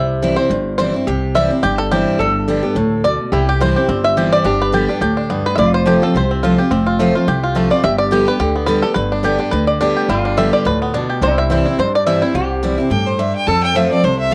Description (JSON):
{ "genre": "bluegrass", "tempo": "213 BPM", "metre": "4/4", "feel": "swing 55% on 8ths", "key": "C major", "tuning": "A4 = 443 Hz", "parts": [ { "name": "bluegrass banjo", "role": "melody", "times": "0.0-12.5 s", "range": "G3 to E5", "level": "-20 LUFS", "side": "equal", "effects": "cassette tape" }, { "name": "lap resonator guitar", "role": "second line", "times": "0.0-14.3 s", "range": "E4 to A4", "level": "-26 LUFS", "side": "equal", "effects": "cassette tape" }, { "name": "picked steel-string acoustic guitar", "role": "accompaniment", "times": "0.0-14.3 s", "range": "F2 to G4", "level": "-20 LUFS", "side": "equal", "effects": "cassette tape" }, { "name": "upright bass", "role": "bass", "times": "0.0-14.3 s", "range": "F1 to G2", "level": "-23 LUFS", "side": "equal", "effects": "none" }, { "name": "clear fiddle", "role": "melody", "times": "12.9-14.3 s", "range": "C5 to A5", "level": "-19 LUFS", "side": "equal", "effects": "cassette tape" } ], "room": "moderate spring reverb, RT60 1.1 s, small room ambience", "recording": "home recording on cassette", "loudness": "-16 LUFS", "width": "mono", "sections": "0.0-12.3 A section; 12.3-14.3 A section", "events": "five-string banjo solo 0.0-12.3; fiddle solo 12.3-14.3", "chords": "0.0 C; 2.2 G; 3.3 C; 4.5 G; 5.6 F; 7.8 G; 11.2 C; 13.5 F", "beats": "0.22 0.50 0.79 | 1.07 1.35 1.63 1.91 | 2.20 2.48 2.76 3.04 | 3.32 3.61 3.89 4.17 | 4.45 4.74 5.02 5.30 | 5.58 5.86 6.14 6.43 | 6.71 6.99 7.27 7.55 | 7.84 8.12 8.40 8.68 | 8.96 9.25 9.53 9.81 | 10.09 10.37 10.66 10.94 | 11.22 11.50 11.78 12.06 | 12.35 12.63 12.91 13.19 | 13.47 13.76 14.04 14.32" }